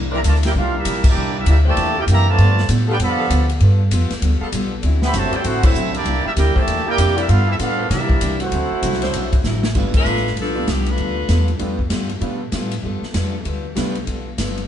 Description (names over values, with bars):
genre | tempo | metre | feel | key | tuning
jazz, big band swing | 196 BPM | 4/4 | swing 62% on 8ths | G mixolydian from 9.7 s | A4 = 440 Hz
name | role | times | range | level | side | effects
picked steel-string acoustic guitar | accompaniment | 0.0-14.6 s | C3 to A4 | -27 LUFS | left 2 dB | none
upright bass | bass | 0.0-14.7 s | G1 to C3 | -19 LUFS | equal | none
warm trumpet section | melody | 0.1-9.4 s | Bb3 to B5 | -22 LUFS | right 1 dB | none
warm trombone section | second line | 0.1-9.4 s | Bb2 to G4 | -24 LUFS | right 3 dB | none
mellow saxophone section | sustained chords | 0.1-9.4 s | E3 to D5 | -29 LUFS | left 1 dB | none
swinging big-band drum kit | drums | 0.2-14.6 s | crash cymbal, hi-hat, kick drum, ride cymbal, snare drum | -22 LUFS | left 1 dB | none
clear grand piano | accompaniment | 9.7-13.9 s | G3 to F4 | -28 LUFS | right 2 dB | none
bright saxophone section | melody | 10.0-11.5 s | F3 to B4 | -22 LUFS | left 3 dB | none
room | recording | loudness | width
moderate stone room reverb, RT60 1.1 s | band playing live in one room, nothing above 10.5 kHz | -16 LUFS | side -10 dB against mid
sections
0.0-9.7 A section; 9.7-14.7 B section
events
band accent 1.0, 5.6, 9.9; drum fill 9.4-9.7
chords
0.0 C9; 2.4 G9; 4.8 D9; 6.1 C9; 7.3 G9; 7.9 C9; 8.5 D9; 9.7 G9